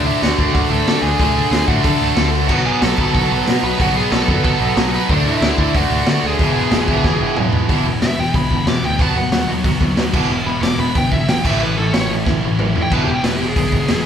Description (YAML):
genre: punk rock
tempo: 184 BPM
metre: 4/4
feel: straight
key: E major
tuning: A4 = 440 Hz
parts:
  - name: bluesy overdriven lead guitar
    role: melody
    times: 0.0-14.1 s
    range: D4 to D6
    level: -22 LUFS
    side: equal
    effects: distortion
  - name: distorted electric guitar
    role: riff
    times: 0.0-14.0 s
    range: E2 to D4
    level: -22 LUFS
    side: right 6 dB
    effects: overdrive
  - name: heavy high-gain guitar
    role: riff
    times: 0.0-14.1 s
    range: A2 to F#4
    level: -24 LUFS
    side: equal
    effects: distortion
  - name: overdriven semi-hollow guitar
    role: riff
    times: 0.0-14.0 s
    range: E2 to D4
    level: -23 LUFS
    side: left 5 dB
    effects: none
  - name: growling picked electric bass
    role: bass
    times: 0.0-14.0 s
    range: E1 to D3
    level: -22 LUFS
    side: equal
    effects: overdrive
  - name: raw garage drum kit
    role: drums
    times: 0.2-14.0 s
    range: crash cymbal, hi-hat, kick drum, snare drum, toms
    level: -18 LUFS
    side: equal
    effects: none
room: light reverb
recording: band playing live in one room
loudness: -14 LUFS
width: side -8 dB against mid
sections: 0.0-7.7 A section; 7.7-14.1 B section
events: drum fill 7.0-7.7, 12.3-12.9; lead electric guitar solo 7.7-14.1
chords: 0.0 D; 2.5 B; 5.1 D; 6.4 E; 9.0 B/D#; 10.1 E; 11.5 A; 12.9 E